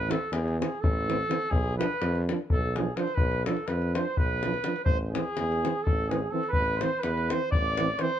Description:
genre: balkan folk, Balkan brass band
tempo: 251 BPM (eighths)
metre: 7/8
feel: straight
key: A harmonic minor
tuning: A4 = 437 Hz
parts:
  - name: mellow trumpet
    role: melody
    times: 0.0-8.2 s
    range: G#4 to D5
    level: -30 LUFS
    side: right 1 dB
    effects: plate reverb
  - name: clear tuba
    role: bass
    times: 0.0-7.9 s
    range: A1 to F2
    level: -31 LUFS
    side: equal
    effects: none
  - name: clear French horn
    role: accompaniment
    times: 0.1-8.1 s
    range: C4 to D4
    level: -35 LUFS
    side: left 6 dB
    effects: none
  - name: mellow trombone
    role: accompaniment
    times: 0.1-8.1 s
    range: E3 to F3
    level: -33 LUFS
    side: right 7 dB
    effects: none
  - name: davul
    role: percussion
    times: 0.1-8.2 s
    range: none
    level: -30 LUFS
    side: left 2 dB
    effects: none
  - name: clear flugelhorn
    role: second line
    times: 4.0-8.2 s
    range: G#4 to D5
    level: -35 LUFS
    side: right 5 dB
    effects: none
room: moderate studio ambience, RT60 0.5 s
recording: dark, warm production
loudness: -25 LUFS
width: side -10 dB against mid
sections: 0.0-8.2 A section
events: none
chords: 0.0 Am; 1.5 Bdim; 4.9 Am

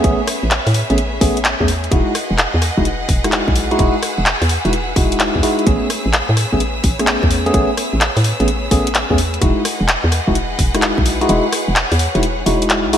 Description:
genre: UK garage, two-step garage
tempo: 128 BPM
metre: 4/4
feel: swing 67% on 16ths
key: A lydian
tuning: A4 = 440 Hz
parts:
  - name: clear studio violin section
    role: sustained chords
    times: 0.0-13.0 s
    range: G#4 to E6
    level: -24 LUFS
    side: right 1 dB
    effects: sidechain pumping
  - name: tine electric piano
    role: stabs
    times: 0.0-13.0 s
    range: G#3 to G#4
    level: -19 LUFS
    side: equal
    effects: wide subtle chorus, ping-pong delay
  - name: hollow knocking FM bass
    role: bass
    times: 0.0-13.0 s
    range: E1 to A2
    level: -19 LUFS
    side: equal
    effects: none
  - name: electronic kick drum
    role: drums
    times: 0.0-11.0 s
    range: none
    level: -18 LUFS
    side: equal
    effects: small room ambience
  - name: house drum kit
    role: drums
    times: 0.0-13.0 s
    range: handclaps, hi-hat, rim click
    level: -20 LUFS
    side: left 1 dB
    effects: small room ambience
room: moderate lush hall reverb, RT60 1.8 s, digital ambience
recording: bright 1980s-style digital production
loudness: -14 LUFS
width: side -9 dB against mid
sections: 0.0-13.0 A section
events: kick drops out 11.3-13.0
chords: 0.0 Amaj9; 1.9 Emaj9; 5.7 Amaj9; 9.4 Emaj9

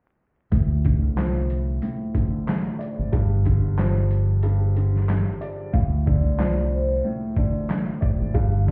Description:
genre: hip hop, boom-bap hip-hop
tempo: 92 BPM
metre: 4/4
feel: swing 56% on 16ths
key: unclear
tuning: A4 = 440 Hz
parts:
  - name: dark upright piano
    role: accompaniment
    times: 0.5-8.7 s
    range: G2 to D5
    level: -30 LUFS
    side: equal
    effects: high-pass filter, low-pass filter
  - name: deep dub fingered electric bass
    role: bass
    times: 0.5-8.7 s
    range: G1 to D2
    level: -23 LUFS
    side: equal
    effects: none
  - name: trip hop sampler-style drum kit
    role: drums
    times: 0.5-8.7 s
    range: handclaps, hi-hat, kick drum, snare drum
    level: -26 LUFS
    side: equal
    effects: none
  - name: vibraphone with soft mallets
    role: melody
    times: 5.7-8.7 s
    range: C5 to F5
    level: -32 LUFS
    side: equal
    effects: high-pass filter, low-pass filter, digital delay
room: little or no reverb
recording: heard muffled through a wall, club reverb, vinyl crackle, EQ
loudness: -23 LUFS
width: mono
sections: 0.5-5.7 A section; 5.7-8.7 B section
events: filter sweep on upright piano 0.5-5.7; break 4.4-5.7; hi-hats muted 5.7-8.7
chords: 0.5 Dm7; 3.1 G5; 5.7 Dm7

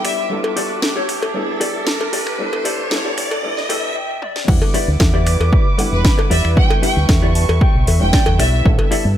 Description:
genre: nu-disco, nu disco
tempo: 115 BPM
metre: 4/4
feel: straight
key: E dorian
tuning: A4 = 439 Hz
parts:
  - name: rich studio violin section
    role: melody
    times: 0.0-0.3, 5.9-8.6 s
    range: B4 to G5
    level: -23 LUFS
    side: right 2 dB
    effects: digital delay
  - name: dark baby grand piano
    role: accompaniment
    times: 0.0-9.2 s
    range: G3 to F#5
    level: -27 LUFS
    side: equal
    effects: sidechain pumping, low-pass filter, digital delay
  - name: muted studio violin section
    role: sustained chords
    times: 0.0-9.2 s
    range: A4 to D6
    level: -28 LUFS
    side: right 3 dB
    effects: sidechain pumping
  - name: mellow electric guitar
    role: riff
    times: 0.0-9.1 s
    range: E4 to A5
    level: -24 LUFS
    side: left 3 dB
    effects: lush chorus, low-pass filter, digital delay
  - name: fingered electric bass with an envelope filter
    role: bass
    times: 0.0-9.2 s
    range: E1 to A2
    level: -18 LUFS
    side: equal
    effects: tube saturation, high-pass filter
  - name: house drum kit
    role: drums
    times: 0.0-9.0 s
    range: crash cymbal, finger snaps, hi-hat, snare drum, toms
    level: -23 LUFS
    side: equal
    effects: overdrive
  - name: riser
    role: sound effects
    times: 0.0-4.0 s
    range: none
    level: -25 LUFS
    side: right 1 dB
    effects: none
  - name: cowbell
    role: percussion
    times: 0.4-8.9 s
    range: none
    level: -26 LUFS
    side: left 3 dB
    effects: none
  - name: electronic kick drum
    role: drums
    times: 4.5-8.8 s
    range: none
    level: -15 LUFS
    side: equal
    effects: overdrive
room: light reverb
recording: high-pass filter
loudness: -14 LUFS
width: side -11 dB against mid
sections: 0.0-4.5 A section; 4.5-9.2 B section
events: build-up 0.0-4.5; clean electric guitar fill 0.0-0.3, 3.7-4.5, 7.1-8.7; riser 0.0-4.0; filter sweep on clean electric guitar 0.0-4.5; filter sweep on grand piano 0.0-4.5; break 4.0-4.5; drum fill 4.2; drop 4.5-9.2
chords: 0.3 A7sus4; 4.5 Em7; 8.7 A7sus4

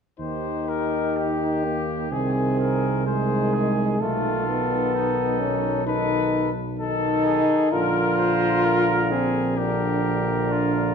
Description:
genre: classical, brass quintet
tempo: 64 BPM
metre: 4/4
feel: rubato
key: Eb major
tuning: A4 = 440 Hz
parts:
  - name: warm trumpet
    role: melody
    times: 0.2-10.9 s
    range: D#4 to C5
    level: -30 LUFS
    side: left 8 dB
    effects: none
  - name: clear flugelhorn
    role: second line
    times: 0.2-10.9 s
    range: G4 to Bb4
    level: -28 LUFS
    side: right 6 dB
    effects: none
  - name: clear euphonium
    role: accompaniment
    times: 0.2-10.9 s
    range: D3 to D#3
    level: -30 LUFS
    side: right 4 dB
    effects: none
  - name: warm French horn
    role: accompaniment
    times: 0.2-10.9 s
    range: Ab3 to F4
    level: -24 LUFS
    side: left 4 dB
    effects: none
  - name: warm tuba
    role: bass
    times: 0.2-10.9 s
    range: Bb1 to Eb2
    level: -27 LUFS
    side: right 4 dB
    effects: none
room: wet recital hall reverb, RT60 1.4 s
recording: none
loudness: -20 LUFS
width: side -6 dB against mid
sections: 0.2-10.9 A section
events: none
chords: 0.2 Eb; 2.1 Ab/C; 4.0 B7; 7.7 Bb

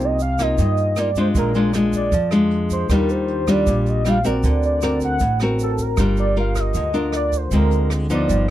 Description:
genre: bossa nova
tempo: 156 BPM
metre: 4/4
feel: straight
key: unclear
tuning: A4 = 440 Hz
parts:
  - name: warm velvety synth lead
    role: melody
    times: 0.0-8.5 s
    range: A4 to F#5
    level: -23 LUFS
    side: right 2 dB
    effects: chorus
  - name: nylon-string guitar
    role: accompaniment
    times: 0.0-8.5 s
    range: G2 to Bb4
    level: -20 LUFS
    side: left 2 dB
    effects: none
  - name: upright bass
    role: bass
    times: 0.0-8.5 s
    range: G1 to G2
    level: -22 LUFS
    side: right 1 dB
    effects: none
  - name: jazz brush drum kit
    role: drums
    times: 0.0-8.4 s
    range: hi-hat, kick drum, rim click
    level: -26 LUFS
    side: right 1 dB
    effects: none
  - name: egg shaker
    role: percussion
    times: 0.0-8.5 s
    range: none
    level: -39 LUFS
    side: right 15 dB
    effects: none
room: small room reverb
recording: dry, close 1970s-style studio recording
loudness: -17 LUFS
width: side -13 dB against mid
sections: 0.0-8.5 A section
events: none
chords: 0.0 Cm11; 1.4 Bb7; 2.9 Ebmaj9; 4.4 D7b13; 6.0 Gm7; 7.5 Dm7b5

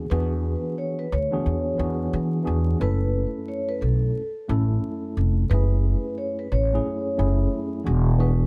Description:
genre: hip hop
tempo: 89 BPM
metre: 4/4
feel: swing 61% on 16ths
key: F# minor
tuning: A4 = 440 Hz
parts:
  - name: vibraphone with soft mallets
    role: melody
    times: 0.0-8.5 s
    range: A4 to C#5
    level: -32 LUFS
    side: equal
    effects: high-pass filter, low-pass filter
  - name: mellow tine electric piano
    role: accompaniment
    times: 0.0-8.5 s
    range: F#2 to A4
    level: -30 LUFS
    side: equal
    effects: cassette tape, high-pass filter, low-pass filter
  - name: upright bass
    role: bass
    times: 0.0-8.5 s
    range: E1 to E3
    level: -24 LUFS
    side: equal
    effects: none
room: light reverb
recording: vinyl crackle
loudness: -24 LUFS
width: mono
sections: 0.0-8.5 A section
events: none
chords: 0.0 E9; 2.8 F#m7; 7.9 E9

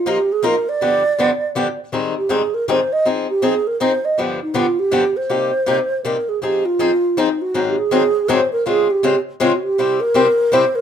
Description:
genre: jazz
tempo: 160 BPM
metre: 3/4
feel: swing 61% on 8ths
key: C minor, F minor from 6.4 s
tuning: A4 = 440 Hz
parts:
  - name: mellow hollow alto flute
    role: melody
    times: 0.0-10.8 s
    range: Eb4 to Eb5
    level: -17 LUFS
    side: right 2 dB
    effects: none
  - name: picked swing-style acoustic guitar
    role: accompaniment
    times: 0.1-10.6 s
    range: G2 to Bb4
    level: -19 LUFS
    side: left 4 dB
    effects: none
room: light reverb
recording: minimal, uncompressed stereo recording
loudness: -15 LUFS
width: side -8 dB against mid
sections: 0.0-6.4 A section; 6.4-10.8 B section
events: none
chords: 0.0 F7sus4; 0.8 G7; 1.9 Abmaj7; 3.0 Fm7; 4.2 G7; 5.3 Cm7; 6.4 Fm7; 7.5 Ab7; 8.7 Dbmaj7; 9.8 C

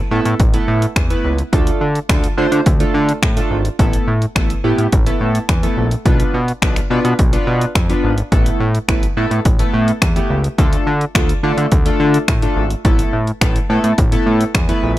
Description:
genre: dance-pop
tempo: 106 BPM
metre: 4/4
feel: straight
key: unclear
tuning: A4 = 440 Hz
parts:
  - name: chorused polysynth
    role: accompaniment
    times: 0.1-14.9 s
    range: A3 to C5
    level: -19 LUFS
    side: equal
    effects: sidechain pumping
  - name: fat analog bass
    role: bass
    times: 0.1-15.0 s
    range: G#1 to D3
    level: -17 LUFS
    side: equal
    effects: sidechain pumping
  - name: punchy analog drum machine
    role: drums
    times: 0.3-14.8 s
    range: finger snaps, hi-hat, kick drum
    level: -16 LUFS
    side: equal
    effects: none
room: digital ambience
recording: none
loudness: -13 LUFS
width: side -15 dB against mid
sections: 0.0-15.0 A section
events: none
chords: 0.0 Asus2; 1.5 Dm; 3.8 Asus2; 6.1 Bdim; 8.3 Asus2; 10.6 Dm; 12.8 Asus2

